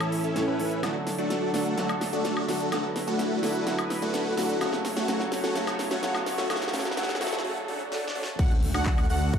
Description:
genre	EDM, festival progressive house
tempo	127 BPM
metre	4/4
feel	straight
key	D major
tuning	A4 = 440 Hz
part	clear grand piano	accompaniment	0.0-8.4 s	A2 to C#5	-32 LUFS	right 2 dB	sidechain pumping, ping-pong delay
part	supersaw pad	sustained chords	0.0-9.4 s	D3 to C#5	-34 LUFS	equal	sidechain pumping
part	big supersaw lead	riff	0.0-9.4 s	A3 to B4	-29 LUFS	equal	phaser, sidechain pumping, low-pass filter, ping-pong delay
part	big-room dance drum kit	drums	0.0-9.4 s	crash cymbal, handclaps, hi-hat, snare drum, woodblock	-33 LUFS	equal	high-pass filter on hats, studio reverb, high-pass filter on snare, high-pass filter on perc, high-pass filter on cymbals
part	riser, swell and impact	sound effects	4.9-9.4 s	none	-39 LUFS	equal	none
part	plucky unison lead	arpeggios	8.4-9.4 s	F#5	-33 LUFS	right 2 dB	wide subtle chorus, cassette tape, sidechain pumping, ping-pong delay
part	wide detuned saw bass	bass	8.4-9.4 s	D2	-28 LUFS	equal	chorus, sidechain pumping
part	electronic kick drum	drums	8.4-9.4 s	none	-24 LUFS	equal	studio reverb
room	wet lush hall reverb, RT60 1.6 s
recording	dark, warm production, high-pass filter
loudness	-25 LUFS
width	side -7 dB against mid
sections	0.0-8.4 A section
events	build-up 0.0-8.4; drum fill 0.0-7.4, 7.9-8.4; filter sweep on supersaw synth 0.0-8.4; filter sweep 0.0-8.4; break 7.4-8.4; swell 7.4-8.4; impact 8.4-9.4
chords	0.0 A; 0.8 D; 2.7 E5; 4.6 F#m; 6.5 A; 8.4 D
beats	0.36 | 0.83 1.30 1.78 2.25 | 2.72 3.19 3.67 4.14 | 4.61 5.08 5.56 6.03 | 6.50 6.97 7.45 7.92 | 8.39 8.86 9.34

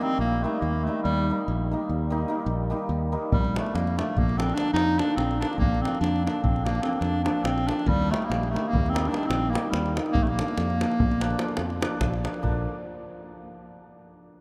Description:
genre	balkan folk, Balkan wedding band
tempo	290 BPM (eighths)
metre	11/8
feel	straight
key	Bb major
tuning	A4 = 441 Hz
part	clear clarinet	melody	0.0-12.0 s	G3 to Eb4	-30 LUFS	equal	none
part	cimbalom	accompaniment	0.0-12.7 s	D3 to Eb4	-33 LUFS	equal	none
part	modern bright fingered electric bass	bass	0.2-12.7 s	Bb1 to F2	-30 LUFS	equal	none
part	davul	percussion	3.3-12.7 s	none	-32 LUFS	equal	none
room	wet cathedral reverb, RT60 5.3 s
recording	in a vast, echoing space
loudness	-26 LUFS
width	mono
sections	0.0-12.4 A section; 12.4-14.4 B section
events	none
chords	0.0 Eb; 3.3 Bb; 7.9 Eb; 10.1 Bb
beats	0.00 0.21 0.41 0.62 0.83 | 1.04 1.25 1.45 1.66 1.87 2.08 2.28 2.49 2.70 2.90 3.11 | 3.32 3.53 3.73 3.94 4.15 4.36 4.56 4.77 4.98 5.18 5.39 | 5.60 5.80 6.01 6.22 6.42 6.63 6.84 7.04 7.25 7.46 7.67 | 7.87 8.08 8.29 8.49 8.70 8.91 9.11 9.32 9.53 9.73 9.94 | 10.15 10.36 10.56 10.77 10.98 11.18 11.39 11.60 11.80 12.01 12.22 | 12.43 12.63

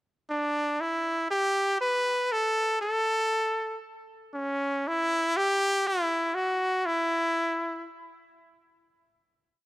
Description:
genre	rock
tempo	free time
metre	none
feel	none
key	E dorian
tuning	A4 = 442 Hz
part	brilliant trumpet	solo	0.3-7.9 s	C#4 to B4	-25 LUFS	equal	none
room	light reverb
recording	none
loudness	-25 LUFS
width	side -17 dB against mid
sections	0.0-0.8 pickup bar; 0.8-8.9 verse; 8.9-9.7 final hit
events	none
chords	none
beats	free time

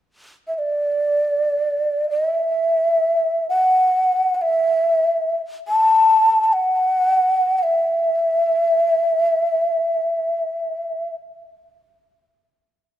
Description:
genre	japanese traditional, Japanese chamber music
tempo	free time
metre	none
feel	none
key	unclear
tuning	A4 = 439 Hz
part	breathy mellow shakuhachi	solo	0.5-11.1 s	D5 to A5	-16 LUFS	equal	none
room	light reverb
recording	minimal, uncompressed stereo recording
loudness	-16 LUFS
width	side -12 dB against mid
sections	0.0-13.0 A section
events	none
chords	none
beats	free time

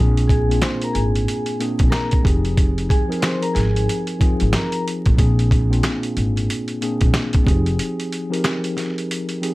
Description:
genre	hip hop, boom-bap hip-hop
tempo	92 BPM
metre	4/4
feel	swing 62% on 16ths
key	F dorian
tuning	A4 = 441 Hz
part	mellow tine electric piano	accompaniment	0.0-9.5 s	Bb2 to Bb4	-23 LUFS	equal	slow stereo tremolo, high-pass filter, low-pass filter
part	upright bass	bass	0.0-7.8 s	F1 to Bb1	-19 LUFS	equal	none
part	boom bap sampler-style drum kit	drums	0.2-9.5 s	hi-hat, kick drum, snare drum	-20 LUFS	equal	none
part	vibraphone with medium mallets	melody	0.3-4.8 s	Ab4 to C6	-27 LUFS	equal	high-pass filter, low-pass filter
room	little or no reverb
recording	vinyl crackle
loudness	-17 LUFS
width	side -20 dB against mid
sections	0.0-9.5 A section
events	break 7.8-9.5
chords	0.0 Bb7; 2.2 Fm7; 5.2 Bb7; 7.5 Fm7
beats	0.62 1.27 1.92 | 2.57 3.23 3.88 4.53 | 5.18 5.83 6.49 7.14 | 7.79 8.44 9.10

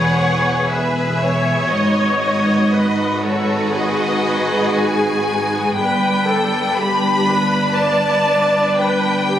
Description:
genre	cinematic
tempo	59 BPM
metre	4/4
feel	rubato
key	unclear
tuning	A4 = 440 Hz
part	clear studio violin section	melody	0.0-9.4 s	C#5 to B5	-22 LUFS	left 2 dB	none
part	clear symphonic violin section	second line	0.0-9.4 s	D4 to B4	-23 LUFS	left 1 dB	none
part	rich symphonic viola section	accompaniment	0.0-9.4 s	G4 to D5	-19 LUFS	equal	none
part	rich symphonic cello section	bass	0.0-9.4 s	E2 to G#2	-22 LUFS	right 1 dB	none
part	rich symphonic double bass section	bass	0.0-9.4 s	E1 to G#1	-24 LUFS	right 1 dB	none
room	moderate recital hall reverb, RT60 1.4 s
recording	recorded on a phone in the room, club reverb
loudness	-15 LUFS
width	side -10 dB against mid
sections	0.0-9.4 A section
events	none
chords	0.0 E; 1.7 G#m7; 5.8 G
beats	0.69 | 1.70 2.72 3.73 4.77 | 5.79 6.79 7.79 8.79

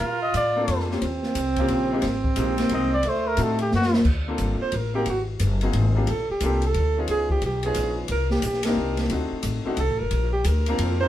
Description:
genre	jazz, small-group swing and bop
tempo	178 BPM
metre	3/4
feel	swing 64% on 8ths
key	G minor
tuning	A4 = 445 Hz
part	breathy trumpet	melody	0.0-4.0 s	F#4 to Eb5	-25 LUFS	left 1 dB	none
part	breathy alto saxophone	second line	0.0-11.1 s	A3 to C5	-26 LUFS	right 2 dB	none
part	upright bass	bass	0.0-11.1 s	Gb1 to Bb2	-25 LUFS	equal	none
part	open jazz drum kit	drums	0.0-10.9 s	crash cymbal, hi-hat, kick drum, ride cymbal, snare drum	-28 LUFS	equal	none
part	bright upright piano	accompaniment	0.6-11.1 s	Db3 to Bb4	-28 LUFS	left 2 dB	none
room	moderate studio reverb, RT60 0.8 s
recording	band playing live in one room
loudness	-21 LUFS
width	side -12 dB against mid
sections	0.0-4.1 A section; 4.1-11.1 B section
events	drum fill 3.7-4.1; alto saxophone solo 4.1-11.1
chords	0.0 Bbmaj9; 1.0 Eb13; 2.0 Abmaj7; 3.0 D7b9; 4.1 Gm11; 5.1 Ab9; 6.1 Bbmaj9; 7.1 C#9; 8.1 Cm9; 9.1 D7b9; 10.1 Gm11 (rootless)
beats	| 0.01 0.35 0.69 | 1.02 1.36 1.70 | 2.03 2.37 2.71 | 3.05 3.38 3.72 | 4.06 4.39 4.73 | 5.07 5.41 5.75 | 6.08 6.42 6.76 | 7.09 7.43 7.77 | 8.11 8.44 8.78 | 9.11 9.45 9.79 | 10.12 10.46 10.79

